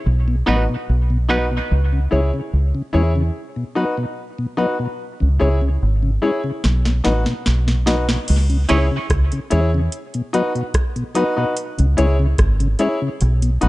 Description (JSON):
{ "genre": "dub reggae", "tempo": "73 BPM", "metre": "4/4", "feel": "straight", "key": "C# minor", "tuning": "A4 = 436 Hz", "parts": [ { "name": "deep dub fingered electric bass", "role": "bass", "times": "0.1-13.7 s", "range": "G#1 to E2", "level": "-16 LUFS", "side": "equal", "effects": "none" }, { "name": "mellow tonewheel organ", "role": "accompaniment", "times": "0.3-13.7 s", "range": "B2 to E4", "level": "-24 LUFS", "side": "left 2 dB", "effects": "slow rotary speaker" }, { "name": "electric guitar at the edge of break-up", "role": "accompaniment", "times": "0.5-1.5, 8.7-8.9 s", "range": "B3 to C#5", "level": "-24 LUFS", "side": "right 3 dB", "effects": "tremolo, tape echo" }, { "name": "bright upright piano", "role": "stabs", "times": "0.5-13.7 s", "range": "D#4 to C#5", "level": "-23 LUFS", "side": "left 1 dB", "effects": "tape echo" }, { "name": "soft vintage rhythm box", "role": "drums", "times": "6.6-13.7 s", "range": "crash cymbal, hi-hat, kick drum, rim click, snare drum", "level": "-22 LUFS", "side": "equal", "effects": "none" } ], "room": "digital ambience", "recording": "nothing above 10.5 kHz", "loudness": "-16 LUFS", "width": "side -18 dB against mid", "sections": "0.0-8.3 A section; 8.3-13.7 B section", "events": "filter sweep 0.0-8.3; drum fill 6.6-8.3", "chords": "0.1 B; 1.7 C#m; 3.3 B; 5.0 C#m; 6.6 B; 8.3 C#m; 9.9 B; 11.6 C#m" }